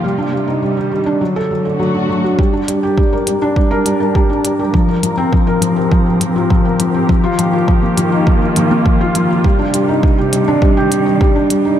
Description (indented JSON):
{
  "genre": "piano and strings electronica",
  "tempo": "102 BPM",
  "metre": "4/4",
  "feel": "straight",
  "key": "unclear",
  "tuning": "A4 = 440 Hz",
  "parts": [
    { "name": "muted studio string section", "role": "sustained chords", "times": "0.0-11.8 s", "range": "C3 to A5", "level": "-20 LUFS", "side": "right 2 dB", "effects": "sidechain pumping, low-pass filter, shimmer reverb" },
    { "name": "felt-muted upright piano", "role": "riff", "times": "0.0-11.8 s", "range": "F3 to Bb4", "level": "-14 LUFS", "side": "left 1 dB", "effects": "digital delay, shimmer reverb" },
    { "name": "electronic kick drum", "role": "drums", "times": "2.4-11.3 s", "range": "none", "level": "-14 LUFS", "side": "right 1 dB", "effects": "overdrive" },
    { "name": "electronic hi-hat", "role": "drums", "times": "2.7-11.6 s", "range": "none", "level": "-20 LUFS", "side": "equal", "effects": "none" }
  ],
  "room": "light reverb, studio ambience",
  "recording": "none",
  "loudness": "-12 LUFS",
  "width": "side -10 dB against mid",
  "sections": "0.0-2.4 A section; 2.4-11.8 B section",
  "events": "build-up 2.4-11.8; filter sweep on string section 2.4-11.8",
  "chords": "0.0 Cmadd9; 1.2 D; 2.4 Gm; 4.7 Fsus4; 7.1 Ebadd9; 9.4 Cmadd9"
}